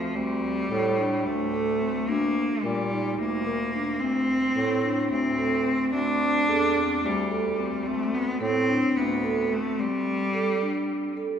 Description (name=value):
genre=contemporary instrumental, chamber music in an uneven meter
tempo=218 BPM (eighths)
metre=7/8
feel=straight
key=unclear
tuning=A4 = 440 Hz
part: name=clear cello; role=melody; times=0.0-11.2 s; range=F3 to D4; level=-26 LUFS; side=equal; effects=none
part: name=vibraphone with soft mallets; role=arpeggios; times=0.0-11.4 s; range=C4 to Bb4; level=-28 LUFS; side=right 1 dB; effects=none
part: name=warm bass clarinet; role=bass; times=0.0-9.7 s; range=D2 to Bb2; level=-31 LUFS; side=left 1 dB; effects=none
room=wet church reverb, RT60 3.6 s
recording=recorded in a church or concert hall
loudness=-23 LUFS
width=side -8 dB against mid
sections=0.0-11.4 A section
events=break 9.8-11.4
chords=0.2 D5; 2.1 Ebmaj7/D; 4.0 D5; 5.9 Am7/D; 7.9 D5; 9.8 D7sus4